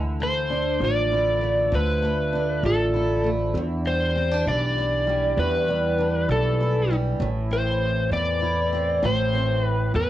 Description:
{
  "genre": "pop",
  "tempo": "66 BPM (dotted quarters)",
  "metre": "6/8",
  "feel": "straight",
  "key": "A minor",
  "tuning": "A4 = 440 Hz",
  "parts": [
    { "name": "picked steel-string acoustic guitar", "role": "accompaniment", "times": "0.0-10.1 s", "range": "E2 to E4", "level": "-26 LUFS", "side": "right 1 dB", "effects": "double-tracked left and right, cassette tape" },
    { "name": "upright bass", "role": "bass", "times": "0.0-10.1 s", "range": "A1 to E2", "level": "-25 LUFS", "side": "equal", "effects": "none" },
    { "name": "overdriven slide guitar", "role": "melody", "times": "0.2-10.1 s", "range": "A4 to D5", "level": "-24 LUFS", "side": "left 1 dB", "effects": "cassette tape" }
  ],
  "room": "moderate studio reverb, RT60 0.6 s",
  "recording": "home recording on cassette",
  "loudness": "-20 LUFS",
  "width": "side -13 dB against mid",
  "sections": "0.0-10.1 A section",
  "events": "none",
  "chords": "0.0 Dmadd9; 3.6 Em7; 7.2 Am",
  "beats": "0.81 | 1.72 2.64 | 3.55 4.46 | 5.38 6.29 | 7.21 8.12 | 9.03 9.94"
}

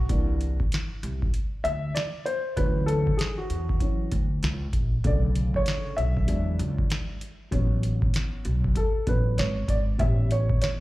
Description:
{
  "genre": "hip hop, jazz-hop",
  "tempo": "97 BPM",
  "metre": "4/4",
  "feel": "swing 63% on 16ths",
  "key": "A major",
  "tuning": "A4 = 440 Hz",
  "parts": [
    { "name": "dark upright piano", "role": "accompaniment", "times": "0.0-10.8 s", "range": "C#3 to E5", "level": "-29 LUFS", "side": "equal", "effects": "none" },
    { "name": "upright bass", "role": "bass", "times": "0.0-10.5 s", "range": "G#1 to E2", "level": "-26 LUFS", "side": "equal", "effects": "none" },
    { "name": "booming analog drum machine", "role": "drums", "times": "0.1-10.8 s", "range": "hi-hat, kick drum, snare drum", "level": "-27 LUFS", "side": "equal", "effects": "none" }
  ],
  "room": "small room ambience",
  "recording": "live gig heard through the venue's PA, club reverb",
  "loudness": "-23 LUFS",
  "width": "side -17 dB against mid",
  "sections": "0.0-10.8 A section",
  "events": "upright piano solo 0.0-10.8",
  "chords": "0.1 C9; 2.6 Dmaj7; 5.0 Bm7; 6.3 E7; 7.5 A69; 10.0 A7",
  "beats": "| 0.10 0.71 1.33 1.95 | 2.57 3.19 3.81 4.43 | 5.04 5.66 6.28 6.90 | 7.52 8.14 8.76 9.38 | 9.99 10.61"
}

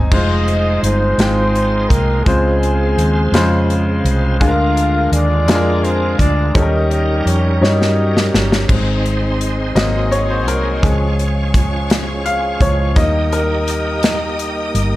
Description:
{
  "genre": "slow gospel",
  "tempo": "56 BPM (dotted quarters)",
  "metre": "6/8",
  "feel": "straight",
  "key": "Ab major",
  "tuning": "A4 = 440 Hz",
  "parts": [
    { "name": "bright baby grand piano", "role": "accompaniment", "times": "0.0-15.0 s", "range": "Db3 to Bb5", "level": "-18 LUFS", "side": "left 1 dB", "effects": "none" },
    { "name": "fingered electric bass", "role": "bass", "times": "0.0-15.0 s", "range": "F1 to G2", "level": "-17 LUFS", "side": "equal", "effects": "none" },
    { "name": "mellow horn section", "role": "melody", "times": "0.1-8.7 s", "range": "Ab3 to F5", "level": "-19 LUFS", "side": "equal", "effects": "none" },
    { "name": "bright tonewheel organ", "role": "sustained chords", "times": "0.1-15.0 s", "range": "G3 to Eb5", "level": "-25 LUFS", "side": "right 3 dB", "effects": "slow rotary speaker, chorus vibrato" },
    { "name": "natural country drum kit", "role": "drums", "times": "0.1-14.9 s", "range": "crash cymbal, hi-hat, kick drum, snare drum", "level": "-17 LUFS", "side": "equal", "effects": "none" },
    { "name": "warm studio string section", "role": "sustained chords", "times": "8.7-15.0 s", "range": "C5 to Eb6", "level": "-28 LUFS", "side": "left 1 dB", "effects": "none" }
  ],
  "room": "light reverb, small room reverb",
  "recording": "none",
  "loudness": "-13 LUFS",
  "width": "side -16 dB against mid",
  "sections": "0.1-8.7 A section; 8.7-15.0 B section",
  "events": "drum fill 7.6-8.7; grand piano solo 8.7-15.0",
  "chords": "0.1 Fm7; 2.3 Dbmaj7; 4.4 Bb7/D; 6.6 Eb7; 8.7 Ab; 9.8 Ab7; 10.8 Db; 13.0 Eb",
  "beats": "| 0.12 1.19 | 2.27 3.34 | 4.41 5.48 | 6.55 7.62 | 8.69 9.76 | 10.83 11.90 | 12.96 14.03"
}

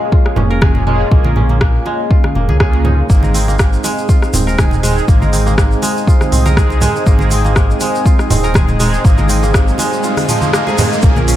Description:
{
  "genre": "afro house",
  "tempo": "121 BPM",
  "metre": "4/4",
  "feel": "swing 55% on 16ths",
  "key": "unclear",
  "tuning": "A4 = 440 Hz",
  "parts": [
    { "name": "kora", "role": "arpeggios", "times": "0.0-11.4 s", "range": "F3 to Bb4", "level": "-20 LUFS", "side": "left 1 dB", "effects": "sidechain pumping, tape echo" },
    { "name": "mellow synth brass", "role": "stabs", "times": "0.0-11.4 s", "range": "Ab3 to C5", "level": "-20 LUFS", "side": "right 2 dB", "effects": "chorus, sidechain pumping, tape echo" },
    { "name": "electronic kick drum", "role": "drums", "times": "0.1-11.1 s", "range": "none", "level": "-11 LUFS", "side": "equal", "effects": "none" },
    { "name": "afro-pop drum kit", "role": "drums", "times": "0.3-11.4 s", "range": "hi-hat, rim click, toms", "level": "-20 LUFS", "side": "equal", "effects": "none" },
    { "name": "round analog bass", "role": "bass", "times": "0.4-11.4 s", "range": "Eb1 to Db2", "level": "-15 LUFS", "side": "equal", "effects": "sidechain pumping" },
    { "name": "congas", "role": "percussion", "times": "0.4-11.3 s", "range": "none", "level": "-20 LUFS", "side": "right 2 dB", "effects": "none" },
    { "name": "warm analog pad", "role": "sustained chords", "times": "3.1-11.4 s", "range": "Bb4 to Eb6", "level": "-25 LUFS", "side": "equal", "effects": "chorus, sidechain pumping" },
    { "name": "tube shaker", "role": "percussion", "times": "3.1-11.4 s", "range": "none", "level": "-26 LUFS", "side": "left 2 dB", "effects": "none" },
    { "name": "riser", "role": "sound effects", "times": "9.1-11.0 s", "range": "none", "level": "-24 LUFS", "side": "equal", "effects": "none" }
  ],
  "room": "little or no reverb",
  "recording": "none",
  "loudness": "-10 LUFS",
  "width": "side -13 dB against mid",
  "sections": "0.0-11.0 A section",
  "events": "riser 9.1-11.0; kick drops out 10.0-11.0",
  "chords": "0.0 Bbm7; 3.1 Ab",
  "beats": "0.12 0.62 | 1.11 1.61 2.11 2.60 | 3.10 3.59 4.09 4.59 | 5.08 5.58 6.07 6.57 | 7.07 7.56 8.06 8.55 | 9.05 9.54 10.04 10.54 | 11.03"
}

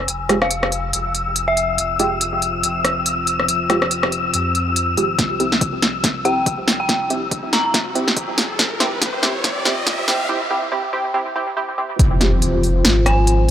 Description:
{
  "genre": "deep dubstep",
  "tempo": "141 BPM",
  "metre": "4/4",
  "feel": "swing 58% on 16ths, half-time",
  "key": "F harmonic minor",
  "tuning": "A4 = 439 Hz",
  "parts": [
    { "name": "dark analog pad", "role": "sustained chords", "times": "0.0-13.5 s", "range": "F4 to C5", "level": "-28 LUFS", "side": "equal", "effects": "chorus, vintage 12-bit sampler grit" },
    { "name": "soft dub sub bass", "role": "bass", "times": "0.0-13.5 s", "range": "F1 to F2", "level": "-24 LUFS", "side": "equal", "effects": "none" },
    { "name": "wind-like tuned noise texture", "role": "texture", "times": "0.0-10.3 s", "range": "E6", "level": "-23 LUFS", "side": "left 4 dB", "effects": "built-in reverb" },
    { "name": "deep house drum kit", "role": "drums", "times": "0.1-13.5 s", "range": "hi-hat, rim click, snare drum", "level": "-19 LUFS", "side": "equal", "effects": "none" },
    { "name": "filtered dub chord stab", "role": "stabs", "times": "0.3-12.3 s", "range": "Ab3 to G4", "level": "-24 LUFS", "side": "right 2 dB", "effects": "analog chorus, dub echo" },
    { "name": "dark detuned synth bell", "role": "melody", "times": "0.4-1.9, 6.2-7.7, 13.1-13.4 s", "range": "E5 to Bb5", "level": "-24 LUFS", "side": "left 1 dB", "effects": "chorus, dub echo" },
    { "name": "electronic kick drum", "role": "drums", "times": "5.2-12.1 s", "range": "none", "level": "-21 LUFS", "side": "equal", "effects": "none" },
    { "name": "riser and impact", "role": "sound effects", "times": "6.7-13.5 s", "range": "none", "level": "-25 LUFS", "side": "equal", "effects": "none" }
  ],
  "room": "light reverb",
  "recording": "dry, gritty hardware recording, high-pass filter",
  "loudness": "-16 LUFS",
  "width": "side -10 dB against mid",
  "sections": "0.0-12.0 A section; 12.0-13.5 B section",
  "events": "build-up 0.0-12.0; filter sweep on analog synth pad 0.0-12.0; drum fill 5.2-10.3; riser 6.7-10.3; break 10.3-12.0; drop 12.0-13.5; impact 12.0-13.5",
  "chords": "0.0 Fmadd9; 5.2 C; 12.0 Fmadd9",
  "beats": "| 0.08 0.51 0.93 1.36 | 1.78 2.21 2.63 3.06 | 3.48 3.91 4.34 4.76 | 5.19 5.61 6.04 6.46 | 6.89 7.32 7.74 8.17 | 8.59 9.02 9.44 9.87 | 10.29 10.72 11.14 11.57 | 12.00 12.42 12.85 13.27"
}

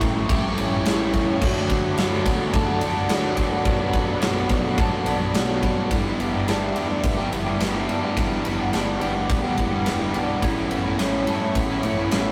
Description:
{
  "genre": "rock, shoegaze and dream pop",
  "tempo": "106 BPM",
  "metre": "4/4",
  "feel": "straight",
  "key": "unclear",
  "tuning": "A4 = 440 Hz",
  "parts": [
    { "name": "airy breathy pad", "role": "sustained chords", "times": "0.0-12.3 s", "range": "G4 to C#6", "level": "-32 LUFS", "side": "equal", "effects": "chorus" },
    { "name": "electric guitar through a small old amp", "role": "arpeggios", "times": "0.0-12.3 s", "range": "E3 to A4", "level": "-31 LUFS", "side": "equal", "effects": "none" },
    { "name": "biting overdriven guitar", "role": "riff", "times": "0.0-12.3 s", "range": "G2 to E4", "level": "-30 LUFS", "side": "equal", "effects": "none" },
    { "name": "crunchy overdriven guitar", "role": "riff", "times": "0.0-12.3 s", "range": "G2 to G4", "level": "-32 LUFS", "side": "equal", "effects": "none" },
    { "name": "overdriven electric guitar", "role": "riff", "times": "0.0-12.3 s", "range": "G2 to G4", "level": "-37 LUFS", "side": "equal", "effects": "none" },
    { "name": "fuzz fingered electric bass", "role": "bass", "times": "0.0-12.3 s", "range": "E1 to G2", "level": "-34 LUFS", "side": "equal", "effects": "overdrive" },
    { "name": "huge arena drum kit", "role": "drums", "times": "0.0-12.3 s", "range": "crash cymbal, kick drum, ride cymbal, snare drum", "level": "-26 LUFS", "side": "equal", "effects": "none" }
  ],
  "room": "wet booth ambience, RT60 0.3 s",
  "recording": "rough rehearsal-room recording",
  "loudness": "-22 LUFS",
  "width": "mono",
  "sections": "0.0-5.9 A section; 5.9-12.3 B section",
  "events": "none",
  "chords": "0.0 A7; 1.4 D6; 3.7 Bm7; 5.9 G6; 10.4 Aadd9",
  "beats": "0.29 0.85 | 1.41 1.98 2.54 3.10 | 3.66 4.23 4.79 5.35 | 5.92 6.48 7.04 7.61 | 8.17 8.73 9.30 9.86 | 10.42 10.99 11.55 12.11"
}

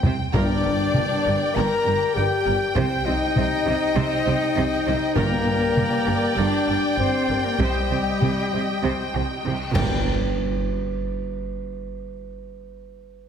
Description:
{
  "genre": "cinematic, epic orchestral film score",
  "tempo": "99 BPM",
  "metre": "4/4",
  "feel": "straight",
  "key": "G minor",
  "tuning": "A4 = 440 Hz",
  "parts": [
    { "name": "rich symphonic violin section", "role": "melody", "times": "0.0-10.1 s", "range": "G5", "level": "-30 LUFS", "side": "left 5 dB", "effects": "none" },
    { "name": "rich symphonic viola section", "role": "accompaniment", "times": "0.0-10.1 s", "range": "D4 to Eb5", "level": "-32 LUFS", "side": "right 2 dB", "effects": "none" },
    { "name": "mellow woodwind section", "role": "sustained chords", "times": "0.0-10.0 s", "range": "G3 to G5", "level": "-32 LUFS", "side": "right 1 dB", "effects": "none" },
    { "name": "clear symphonic cello section", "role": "bass", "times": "0.0-10.1 s", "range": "G2 to C3", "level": "-28 LUFS", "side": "right 3 dB", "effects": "none" },
    { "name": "rich symphonic double bass section", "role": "bass", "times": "0.0-10.1 s", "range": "G1 to C2", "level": "-28 LUFS", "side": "right 3 dB", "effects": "none" },
    { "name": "taiko ensemble", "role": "drums", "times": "0.0-10.9 s", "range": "none", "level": "-26 LUFS", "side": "equal", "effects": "none" },
    { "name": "clear symphonic violin section", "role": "second line", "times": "0.3-10.1 s", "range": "G4 to Bb5", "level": "-33 LUFS", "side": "left 2 dB", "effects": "none" },
    { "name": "silver concert flute", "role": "second line", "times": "0.3-10.1 s", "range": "G4 to Bb5", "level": "-28 LUFS", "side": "left 2 dB", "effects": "none" },
    { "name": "mellow French horn section", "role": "sustained chords", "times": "0.3-10.0 s", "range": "G3 to Bb4", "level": "-25 LUFS", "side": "left 4 dB", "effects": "none" },
    { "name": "timpani", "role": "percussion", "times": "0.3-1.2, 5.2-6.0, 9.8-10.0 s", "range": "G2", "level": "-28 LUFS", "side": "right 1 dB", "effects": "none" },
    { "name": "cymbal swell, clash cymbals and concert bass drum", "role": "percussion", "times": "7.6-10.9 s", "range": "none", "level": "-31 LUFS", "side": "right 1 dB", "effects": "none" }
  ],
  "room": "moderate scoring stage reverb, RT60 1.5 s",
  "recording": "heavily compressed radio sound",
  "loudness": "-20 LUFS",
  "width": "side -8 dB against mid",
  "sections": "0.0-10.1 A section; 10.1-12.5 B section",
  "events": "drum fill 0.0-0.3; band accent 10.1-10.7",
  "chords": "0.3 Gm; 2.8 Cm; 5.2 Gm; 7.6 Cm; 9.8 Gm; 10.1 N.C.",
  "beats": "| 0.34 0.94 1.55 2.15 | 2.75 3.35 3.96 4.56 | 5.16 5.76 6.36 6.97 | 7.59 8.21 8.83 9.45 | 10.07 10.68"
}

